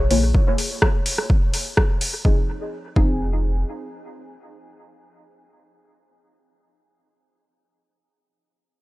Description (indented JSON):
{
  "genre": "dub techno",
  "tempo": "126 BPM",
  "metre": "4/4",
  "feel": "straight",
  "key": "F minor",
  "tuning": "A4 = 439 Hz",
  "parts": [
    { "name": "pure sine sub bass", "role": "bass", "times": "0.0-3.6 s", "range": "F1 to Bb1", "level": "-22 LUFS", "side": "equal", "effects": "transformer saturation, sidechain pumping" },
    { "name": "deep mellow chord stab", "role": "stabs", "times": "0.1-6.7 s", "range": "F3 to Db5", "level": "-27 LUFS", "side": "left 1 dB", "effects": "chorus, phaser, sidechain pumping, dub echo" },
    { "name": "deep house drum kit", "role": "drums", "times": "0.1-2.1 s", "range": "hi-hat, rim click", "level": "-23 LUFS", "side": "equal", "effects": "overdrive, studio reverb, dub echo" },
    { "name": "electronic kick drum", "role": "drums", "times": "0.3-3.1 s", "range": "none", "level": "-19 LUFS", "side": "equal", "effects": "overdrive, studio reverb" }
  ],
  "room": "digital ambience",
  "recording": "dry, gritty hardware recording, transformer saturation, cassette tape",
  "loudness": "-18 LUFS",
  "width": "side -18 dB against mid",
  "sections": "0.0-2.2 A section; 2.2-6.1 B section",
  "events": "none",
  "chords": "0.0 Bbm7; 2.2 Fm7"
}